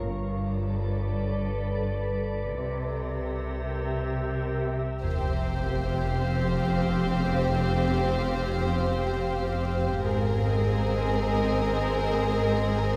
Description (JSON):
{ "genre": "cinematic, suspense film score", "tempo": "96 BPM", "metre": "4/4", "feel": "straight", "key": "F minor from 5.0 s", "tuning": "A4 = 438 Hz", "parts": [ { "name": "glassy FM pad", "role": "sustained chords", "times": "0.0-13.0 s", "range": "G4 to F5", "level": "-35 LUFS", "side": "equal", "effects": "ensemble chorus, built-in reverb" }, { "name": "dark chamber double bass section", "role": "bass", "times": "0.0-13.0 s", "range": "F1 to C2", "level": "-34 LUFS", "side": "equal", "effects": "none" }, { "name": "warm chamber cello section", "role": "bass", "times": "0.0-13.0 s", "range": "F2 to C3", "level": "-34 LUFS", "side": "equal", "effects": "none" }, { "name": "punchy sub bass", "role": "drone", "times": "0.0-13.0 s", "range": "F1 to C2", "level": "-38 LUFS", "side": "equal", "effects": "none" }, { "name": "warm chamber violin section", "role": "melody", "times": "5.0-13.0 s", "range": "Bb4 to C5", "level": "-35 LUFS", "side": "equal", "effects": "none" }, { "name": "dark studio violin section", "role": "second line", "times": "5.0-13.0 s", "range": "G4 to Ab4", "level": "-36 LUFS", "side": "equal", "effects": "none" }, { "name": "rich chamber viola section", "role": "accompaniment", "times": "5.0-13.0 s", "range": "C4", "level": "-37 LUFS", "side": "equal", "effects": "none" }, { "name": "marimba with medium mallets", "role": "riff", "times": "5.0-13.0 s", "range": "F2 to Ab3", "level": "-36 LUFS", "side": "equal", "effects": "none" }, { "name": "sub drop", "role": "sound effects", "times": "5.0-7.5 s", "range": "none", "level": "-37 LUFS", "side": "equal", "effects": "none" } ], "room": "moderate scoring stage reverb, RT60 1.8 s", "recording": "none", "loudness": "-27 LUFS", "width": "mono", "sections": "0.0-5.0 A section; 5.0-13.0 B section", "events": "impact 5.0-7.5", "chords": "0.0 Gadd9; 2.5 C7; 5.0 Fsus2; 10.0 Abadd9" }